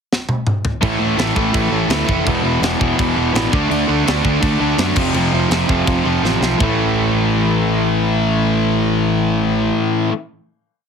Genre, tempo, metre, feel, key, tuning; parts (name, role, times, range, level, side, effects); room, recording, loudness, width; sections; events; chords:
punk rock; 167 BPM; 4/4; straight; A minor; A4 = 440 Hz
tight metal drum kit; drums; 0.1-6.7 s; crash cymbal, kick drum, snare drum, toms; -21 LUFS; equal
distorted electric guitar; riff; 0.8-10.1 s; E2 to D4; -20 LUFS; left 10 dB; distortion
high-gain distorted guitar; riff; 0.8-10.1 s; E2 to D4; -22 LUFS; equal; distortion
overdriven semi-hollow guitar; riff; 0.8-10.1 s; E2 to D4; -20 LUFS; right 13 dB
fuzz picked electric bass; bass; 0.8-9.7 s; E1 to F#2; -21 LUFS; equal; overdrive
light reverb; heavily compressed radio sound, multiband compression; -14 LUFS; side -6 dB against mid
0.0-0.8 pickup bar; 0.8-6.6 riff; 6.6-9.5 final chord
drum fill 0.1-0.8, 6.2-6.6
0.0 N.C.; 0.8 A5; 2.3 E5; 3.5 D5; 5.0 F5; 6.6 A5